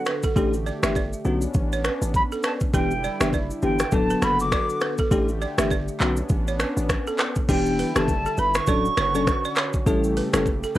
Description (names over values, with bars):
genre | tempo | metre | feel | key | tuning
afrobeats | 101 BPM | 4/4 | swing 58% on 16ths | D major | A4 = 440 Hz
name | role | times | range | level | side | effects
jazz flute | melody | 0.0-9.6 s | G5 to D6 | -25 LUFS | right 2 dB | cassette tape
bell-like FM electric piano | accompaniment | 0.0-10.8 s | D3 to A4 | -24 LUFS | left 2 dB | chorus, cassette tape
warm analog pad | sustained chords | 0.0-10.8 s | C#3 to G4 | -32 LUFS | left 1 dB | chorus, cassette tape
balafon | riff | 0.1-10.7 s | A4 to E5 | -30 LUFS | right 5 dB | cassette tape, analog delay
afro-pop drum kit | drums | 0.1-10.8 s | crash cymbal, finger snaps, handclaps, hi-hat, kick drum, rim click, shaker | -24 LUFS | equal | none
hard-hitting 808-style bass | bass | 0.4-10.8 s | D1 to B1 | -27 LUFS | equal | none
room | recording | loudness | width
light reverb | home recording on cassette | -20 LUFS | side -14 dB against mid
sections
0.0-7.5 A section; 7.5-10.8 B section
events
none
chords
0.4 A7sus4; 1.3 Bmadd9; 2.7 Em7; 3.9 D6; 5.1 A7sus4; 6.0 Bmadd9; 7.5 Em7; 8.7 Dmaj7; 9.9 A7